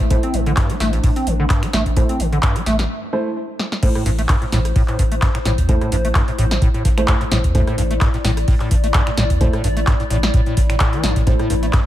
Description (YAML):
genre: acid house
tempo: 129 BPM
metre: 4/4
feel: swing 54% on 16ths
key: A minor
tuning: A4 = 440 Hz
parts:
  - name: warbly tape-like pad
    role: sustained chords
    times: 0.0-11.9 s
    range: A3 to D5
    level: -27 LUFS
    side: left 2 dB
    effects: chorus, built-in reverb, sidechain pumping
  - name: acid bass, square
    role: riff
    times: 0.0-11.8 s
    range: A1 to C4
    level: -22 LUFS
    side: equal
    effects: overdrive, lush chorus, digital delay
  - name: warm sub bass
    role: bass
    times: 0.0-11.7 s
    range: A1 to E2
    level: -21 LUFS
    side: equal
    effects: sidechain pumping
  - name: electro analog drum machine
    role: drums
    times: 0.0-11.8 s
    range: crash cymbal, finger snaps, handclaps, hi-hat, rim click, snare drum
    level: -24 LUFS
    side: equal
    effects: none
  - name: electronic kick drum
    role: drums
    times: 0.0-11.8 s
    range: none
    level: -17 LUFS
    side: equal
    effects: none
  - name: dark concert grand piano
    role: stabs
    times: 0.1-11.4 s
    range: A3 to C5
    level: -25 LUFS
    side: right 2 dB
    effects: digital delay
  - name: breakbeat sampler-style drum kit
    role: drums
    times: 0.1-11.9 s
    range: hi-hat, snare drum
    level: -38 LUFS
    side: equal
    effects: none
room: little or no reverb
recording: none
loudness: -15 LUFS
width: side -13 dB against mid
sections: 0.0-3.8 A section; 3.8-11.9 B section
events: break 2.9-3.8; drum fill 3.6; drop 3.8-11.9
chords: 0.0 Am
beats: | 0.11 0.57 1.04 1.50 | 1.97 2.43 2.90 3.36 | 3.83 4.29 4.76 5.22 | 5.69 6.15 6.62 7.08 | 7.55 8.01 8.48 8.94 | 9.41 9.87 10.34 10.80 | 11.27 11.73